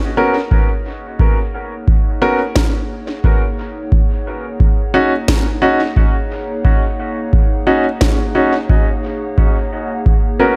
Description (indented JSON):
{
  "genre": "ambient dub",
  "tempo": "88 BPM",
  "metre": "4/4",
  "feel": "swing 60% on 16ths",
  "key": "unclear",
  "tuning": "A4 = 440 Hz",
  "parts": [
    { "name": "warbly tape-like pad", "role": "sustained chords", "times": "0.1-10.6 s", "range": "A#3 to F#5", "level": "-28 LUFS", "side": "equal", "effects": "chorus, built-in reverb" },
    { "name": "warm upright piano", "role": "stabs", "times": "0.2-10.6 s", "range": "B3 to A#4", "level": "-20 LUFS", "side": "equal", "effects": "dub echo" },
    { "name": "electronic kick drum", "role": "drums", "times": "0.5-10.2 s", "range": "none", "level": "-16 LUFS", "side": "equal", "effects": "none" },
    { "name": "electronic snare drum", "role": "drums", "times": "2.6-8.2 s", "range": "none", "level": "-24 LUFS", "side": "equal", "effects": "overdrive, dub echo" }
  ],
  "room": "light reverb",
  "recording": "none",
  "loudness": "-16 LUFS",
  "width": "mono",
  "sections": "0.0-10.6 A section",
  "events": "fade-in on ambient pad 0.0-10.6",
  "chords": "0.0 G#9sus4; 3.9 D#m7; 9.4 G#m11",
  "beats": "0.51 | 1.19 1.88 2.56 3.24 | 3.92 4.60 5.29 5.97 | 6.65 7.33 8.01 8.69 | 9.38 10.06"
}